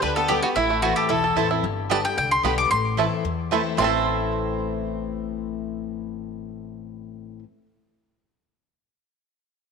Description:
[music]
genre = bluegrass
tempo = 224 BPM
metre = 4/4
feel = straight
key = A minor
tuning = A4 = 441 Hz
[part]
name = mandolin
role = melody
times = 0.0-7.4 s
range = E4 to D6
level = -25 LUFS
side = left 1 dB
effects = tape echo
[part]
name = clear fiddle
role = second line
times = 0.0-1.5 s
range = E4 to B4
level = -28 LUFS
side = left 8 dB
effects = none
[part]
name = picked steel-string acoustic guitar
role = accompaniment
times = 0.0-7.4 s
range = E2 to G4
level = -28 LUFS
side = left 11 dB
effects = none
[part]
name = bluegrass banjo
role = arpeggios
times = 0.0-7.4 s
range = A3 to A4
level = -26 LUFS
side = right 8 dB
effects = none
[part]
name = upright bass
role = bass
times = 0.0-7.4 s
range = G1 to E2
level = -32 LUFS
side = equal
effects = none
[part]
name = mandolin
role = stabs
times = 0.3-7.4 s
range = A3 to A5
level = -31 LUFS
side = right 8 dB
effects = none
[sound]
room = moderate echo chamber reverb, RT60 1.7 s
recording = 1960s-style stereo with parts hard left and right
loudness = -21 LUFS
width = side -5 dB against mid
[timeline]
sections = 0.0-1.6 A section; 1.6-3.8 B section; 3.8-5.9 C section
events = none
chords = 0.0 G; 0.6 Am; 1.6 G; 2.7 Am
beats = 0.03 0.30 | 0.56 0.83 1.10 1.37 | 1.64 1.91 2.17 2.44 | 2.71 2.98 3.25 3.51 | 3.78 4.05 4.32 4.59 | 4.86 5.12 5.39 5.66

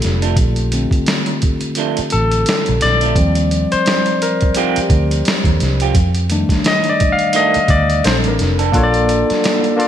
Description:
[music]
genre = R&B, neo-soul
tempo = 86 BPM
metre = 4/4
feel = swing 57% on 16ths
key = Bb major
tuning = A4 = 445 Hz
[part]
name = barky tine electric piano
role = accompaniment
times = 0.0-9.9 s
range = D3 to F5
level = -16 LUFS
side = left 2 dB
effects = none
[part]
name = vintage muted fingered electric bass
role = bass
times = 0.0-9.3 s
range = F1 to F2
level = -17 LUFS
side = right 1 dB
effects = none
[part]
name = boom bap sampler-style drum kit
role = drums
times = 0.0-9.9 s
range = hi-hat, kick drum, snare drum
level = -18 LUFS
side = right 1 dB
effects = gated reverb
[part]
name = electric guitar through a small old amp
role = second line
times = 0.2-8.7 s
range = Eb3 to A4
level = -24 LUFS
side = right 10 dB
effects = none
[part]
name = warm woodwind section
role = sustained chords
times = 8.7-9.9 s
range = D3 to A4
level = -24 LUFS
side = right 4 dB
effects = none
[sound]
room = moderate lush hall reverb, RT60 1.9 s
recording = bright 1980s-style digital production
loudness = -13 LUFS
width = side -10 dB against mid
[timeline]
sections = 0.0-8.7 A section; 8.7-9.9 B section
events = tine electric piano solo 0.0-8.7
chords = 0.0 Bbmaj7; 3.2 Eb69; 6.0 F13; 8.0 Bbmaj9; 8.7 Bbmaj7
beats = | 0.37 1.07 1.76 2.46 | 3.16 3.86 4.56 5.25 | 5.95 6.65 7.35 8.04 | 8.74 9.44

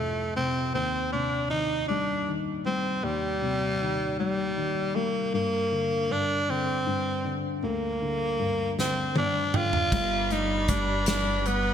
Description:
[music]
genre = six-eight pop ballad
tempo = 52 BPM (dotted quarters)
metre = 6/8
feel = straight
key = unclear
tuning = A4 = 435 Hz
[part]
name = growling tenor saxophone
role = melody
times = 0.0-11.7 s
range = G3 to F4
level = -27 LUFS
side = right 1 dB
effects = ping-pong delay
[part]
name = felt-muted upright piano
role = accompaniment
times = 0.0-11.7 s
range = C2 to G5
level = -31 LUFS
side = left 4 dB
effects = wide subtle chorus
[part]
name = modern studio drum kit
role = drums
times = 8.8-11.6 s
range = crash cymbal, hi-hat, kick drum, snare drum, toms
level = -29 LUFS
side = right 1 dB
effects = gated reverb
[part]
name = dark studio string section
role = sustained chords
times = 9.9-11.7 s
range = G4 to B5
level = -34 LUFS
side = left 1 dB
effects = none
[part]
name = upright bass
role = bass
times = 9.9-11.7 s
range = G1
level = -31 LUFS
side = right 1 dB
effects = none
[sound]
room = moderate lush hall reverb, RT60 2.0 s, studio reverb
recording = bright 1980s-style digital production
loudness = -25 LUFS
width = side -8 dB against mid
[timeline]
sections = 0.0-9.9 A section; 9.9-11.7 B section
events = felt piano fill 8.8-9.9; drum fill 8.8-9.9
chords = 0.0 F; 0.7 Cm/Eb; 5.3 Gm; 9.9 G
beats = | 0.73 1.89 | 3.03 4.18 | 5.33 6.48 | 7.63 8.78 | 9.93 11.07

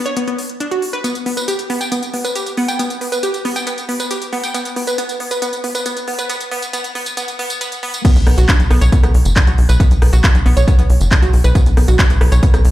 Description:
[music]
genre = uplifting trance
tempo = 137 BPM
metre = 4/4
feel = straight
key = B minor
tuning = A4 = 440 Hz
[part]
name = analog pluck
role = arpeggios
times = 0.1-12.6 s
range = B3 to G5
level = -20 LUFS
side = right 1 dB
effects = chorus, sidechain pumping, dub echo
[part]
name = techno drum kit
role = drums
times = 0.1-12.7 s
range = crash cymbal, handclaps, hi-hat, rim click, tambourine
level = -22 LUFS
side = equal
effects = sidechain pumping on hats, sidechain pumping on perc, sidechain pumping on cymbals
[part]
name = electronic kick drum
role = drums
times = 8.0-12.5 s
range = none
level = -13 LUFS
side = equal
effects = none
[part]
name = tight sequencer bass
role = bass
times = 8.2-12.7 s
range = F#1 to B1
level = -12 LUFS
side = equal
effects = sidechain pumping
[sound]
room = light reverb, digital ambience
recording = played on a big sound system in a bare room, large studio reverb, high-pass filter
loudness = -13 LUFS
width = side -15 dB against mid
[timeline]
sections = 0.0-8.0 A section; 8.0-12.7 B section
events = build-up 0.0-8.0; filter sweep 0.0-8.0; drop 8.0-12.7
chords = 0.0 Bmadd9; 1.0 N.C.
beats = 0.17 0.60 | 1.04 1.48 1.92 2.35 | 2.79 3.23 3.67 4.11 | 4.54 4.98 5.42 5.86 | 6.30 6.74 7.17 7.61 | 8.05 8.49 8.93 9.36 | 9.80 10.24 10.68 11.11 | 11.55 11.99 12.43

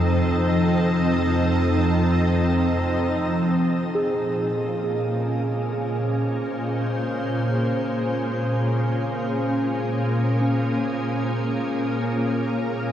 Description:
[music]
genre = ambient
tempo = free time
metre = none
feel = none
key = Bb minor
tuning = A4 = 438 Hz
[part]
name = soft additive organ-like pad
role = sustained chords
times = 0.0-12.9 s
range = Bb2 to Eb5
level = -21 LUFS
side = equal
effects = ensemble chorus, built-in reverb
[part]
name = dark chamber double bass section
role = bass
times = 0.0-3.9 s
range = F2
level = -24 LUFS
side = equal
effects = tube saturation
[part]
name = muted felt-like synth keys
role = arpeggios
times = 3.9-12.9 s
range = Db4 to Ab4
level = -30 LUFS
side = right 1 dB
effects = chorus, tape echo
[sound]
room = wet shimmer reverb, RT60 7.5 s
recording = dark, warm production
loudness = -20 LUFS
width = side -10 dB against mid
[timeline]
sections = 0.0-3.9 A section; 3.9-12.9 B section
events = fade-out on synth keys 3.9-12.9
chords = 0.0 F7; 3.9 Bbm7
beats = free time

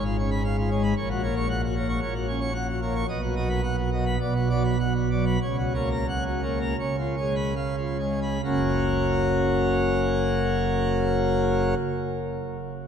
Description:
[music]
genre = classical, organ toccata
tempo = 66-115 BPM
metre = 4/4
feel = straight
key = F# major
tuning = A4 = 436 Hz
[part]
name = pipe organ, plenum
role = solo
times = 0.0-11.7 s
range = F#1 to C#6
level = -23 LUFS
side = equal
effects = none
[sound]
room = wet cathedral reverb, RT60 6.0 s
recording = none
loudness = -23 LUFS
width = side -7 dB against mid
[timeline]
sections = 0.0-8.4 A section; 8.4-12.9 B section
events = slowing down 2.0-8.4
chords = 0.0 C#7/G#; 1.0 F#/A#; 3.1 B; 4.2 Bm; 5.4 F#/C#; 6.8 C#7; 8.4 F#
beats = 0.44 | 0.97 1.49 2.02 2.55 | 3.09 3.63 4.20 4.79 | 5.42 6.08 6.79 7.57 | 8.45 9.36 10.26 11.17

